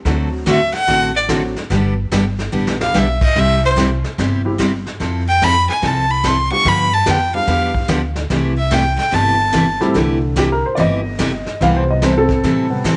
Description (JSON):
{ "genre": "country, western swing", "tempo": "146 BPM", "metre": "4/4", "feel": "swing 65% on 8ths", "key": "C major", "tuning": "A4 = 442 Hz", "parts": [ { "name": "upright bass", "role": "bass", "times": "0.0-13.0 s", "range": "G1 to A2", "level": "-23 LUFS", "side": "equal", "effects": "none" }, { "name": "picked steel-string acoustic guitar", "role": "accompaniment", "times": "0.1-13.0 s", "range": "C3 to A4", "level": "-22 LUFS", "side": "equal", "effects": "none" }, { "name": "warm upright piano", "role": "accompaniment", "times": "0.1-13.0 s", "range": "C3 to F5", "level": "-22 LUFS", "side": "equal", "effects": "none" }, { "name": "vintage brush drum kit", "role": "drums", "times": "0.1-13.0 s", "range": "brushed snare drum, crash cymbal, hi-hat, kick drum, snare drum", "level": "-26 LUFS", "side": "equal", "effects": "none" }, { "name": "clear fiddle", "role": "melody", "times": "0.5-9.8 s", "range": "C5 to Db6", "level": "-18 LUFS", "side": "equal", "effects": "none" } ], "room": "light reverb, studio reverb", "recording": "nothing above 10.3 kHz", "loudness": "-16 LUFS", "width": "mono", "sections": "0.0-10.0 A section; 10.0-13.0 A section", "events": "fiddle solo 0.0-10.0; drum fill 2.5-2.9; upright piano solo 10.0-13.0", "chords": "0.1 D7; 1.7 G; 3.4 C; 5.0 Fmaj7; 6.7 G7; 8.3 C6; 11.6 Am7/C" }